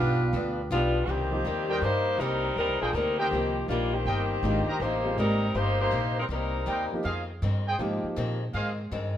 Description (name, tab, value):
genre	jazz, big band swing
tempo	161 BPM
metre	4/4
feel	swing 66% on 8ths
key	C minor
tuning	A4 = 441 Hz
part	clear trumpet section	melody	0.0-0.7 s	D4 to F5	-32 LUFS	right 2 dB	none
part	warm trombone section	second line	0.0-0.7 s	B3 to F4	-30 LUFS	right 3 dB	none
part	picked acoustic archtop guitar	accompaniment	0.0-9.2 s	F2 to Eb4	-35 LUFS	left 3 dB	none
part	upright bass	bass	0.0-9.2 s	G1 to Bb2	-30 LUFS	equal	none
part	dark saxophone section	melody	0.7-6.9 s	Eb3 to C5	-28 LUFS	left 2 dB	none
part	warm concert grand piano	accompaniment	1.3-8.4 s	Eb3 to D5	-34 LUFS	right 1 dB	none
part	warm trumpet section	stabs	1.7-8.7 s	Ab4 to Bb5	-33 LUFS	right 1 dB	none
room	moderate large studio reverb, RT60 1.2 s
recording	none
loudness	-25 LUFS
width	side -10 dB against mid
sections	0.0-1.1 A section; 1.1-9.2 B section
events	none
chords	0.0 G7; 1.1 Cm7; 7.0 Fm7